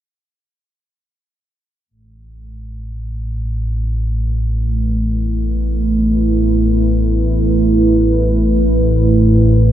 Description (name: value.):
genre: dark ambient drone.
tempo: free time.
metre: none.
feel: none.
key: A minor.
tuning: A4 = 439 Hz.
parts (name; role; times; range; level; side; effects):
deep dark ambient pad; sustained chords; 4.6-9.7 s; A3 to C5; -16 LUFS; right 1 dB; chorus, built-in reverb.
analog drone; drone; 2.5-9.7 s; A1 to A2; -16 LUFS; equal; lush chorus.
room: wet spring reverb, RT60 2.3 s.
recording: cassette tape.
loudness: -13 LUFS.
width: side -11 dB against mid.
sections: 1.9-9.7 A section.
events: none.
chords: 1.9 Am.